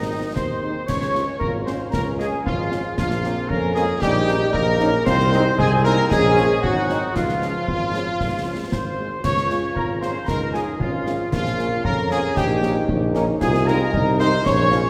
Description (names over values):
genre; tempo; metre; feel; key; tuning
military-style march for wind band; 115 BPM; 2/4; straight; Db major; A4 = 439 Hz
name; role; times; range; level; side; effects
dark trumpet section; melody; 0.0-14.9 s; Eb4 to Db5; -29 LUFS; equal; none
flute section; second line; 0.0-14.9 s; Eb5 to Db6; -30 LUFS; equal; none
mellow euphonium; second line; 0.0-14.9 s; Eb3 to F4; -29 LUFS; equal; none
warm woodwind section; second line; 0.0-14.9 s; Eb4 to Db5; -32 LUFS; equal; none
warm trombone section; sustained chords; 0.0-14.9 s; Eb3 to F4; -33 LUFS; equal; none
mellow tuba; bass; 0.0-14.9 s; Ab1 to F2; -26 LUFS; equal; none
mellow French horn section; accompaniment; 0.1-14.8 s; F3 to F4; -32 LUFS; equal; none
concert snare drum, concert bass drum and clash cymbals; drums; 0.4-14.8 s; none; -30 LUFS; equal; none
room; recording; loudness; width
wet scoring stage reverb, RT60 1.9 s; recorded in a church or concert hall; -21 LUFS; mono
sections
0.0-9.2 A section; 9.2-14.9 A section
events
none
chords
0.0 Ab; 0.9 Db; 3.0 Bbm; 4.0 Eb7/Bb; 5.1 Ab/C; 6.1 Bbm; 6.6 Ab7; 7.2 Db; 11.3 Bbm; 12.4 Eb7/Bb; 13.4 Ab/C